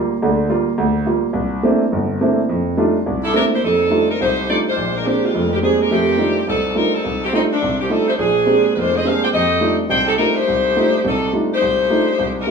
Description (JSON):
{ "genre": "jazz", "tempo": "210 BPM", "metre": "4/4", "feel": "swing 61% on 8ths", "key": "F mixolydian from 3.6 s", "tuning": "A4 = 440 Hz", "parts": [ { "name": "clear concert grand piano", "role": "accompaniment", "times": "0.0-12.5 s", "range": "F1 to G4", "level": "-17 LUFS", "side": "right 1 dB", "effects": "none" }, { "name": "warm saxophone section", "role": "melody", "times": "3.2-12.5 s", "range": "Eb3 to G5", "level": "-17 LUFS", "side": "equal", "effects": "none" } ], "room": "wet large studio reverb, RT60 1.1 s", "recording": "band playing live in one room, small room ambience", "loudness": "-15 LUFS", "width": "side -5 dB against mid", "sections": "0.0-3.6 A section; 3.6-12.5 B section", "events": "none", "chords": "0.0 Gm7; 1.4 C13; 2.5 F13; 3.1 C13; 3.6 F13; 4.8 Bb13; 5.9 F13; 8.2 Bb13; 9.3 F13", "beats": "| 0.23 0.51 0.80 1.08 | 1.36 1.64 1.93 2.21 | 2.49 2.78 3.06 3.34 | 3.63 3.91 4.20 4.48 | 4.76 5.05 5.33 5.62 | 5.90 6.19 6.47 6.76 | 7.04 7.33 7.61 7.90 | 8.18 8.47 8.76 9.04 | 9.33 9.61 9.90 10.18 | 10.47 10.75 11.04 11.32 | 11.61 11.89 12.18 12.46" }